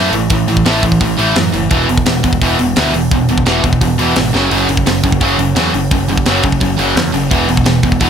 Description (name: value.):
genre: punk rock.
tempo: 171 BPM.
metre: 4/4.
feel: straight.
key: unclear.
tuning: A4 = 440 Hz.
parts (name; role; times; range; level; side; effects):
distorted electric guitar; riff; 0.0-8.1 s; E2 to A3; -15 LUFS; right 10 dB; distortion.
tight distorted guitar; riff; 0.0-8.1 s; E2 to A3; -16 LUFS; left 11 dB; distortion.
growling picked electric bass; bass; 0.0-8.1 s; E1 to F#2; -18 LUFS; equal; overdrive.
tight metal drum kit; drums; 0.1-8.1 s; hi-hat, kick drum, snare drum; -16 LUFS; equal; none.
room: little or no reverb.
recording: none.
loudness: -10 LUFS.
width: side -8 dB against mid.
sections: 0.0-8.1 A section.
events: drum fill 4.3.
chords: 0.0 A5; 1.7 E5; 4.3 F#5; 7.3 E5.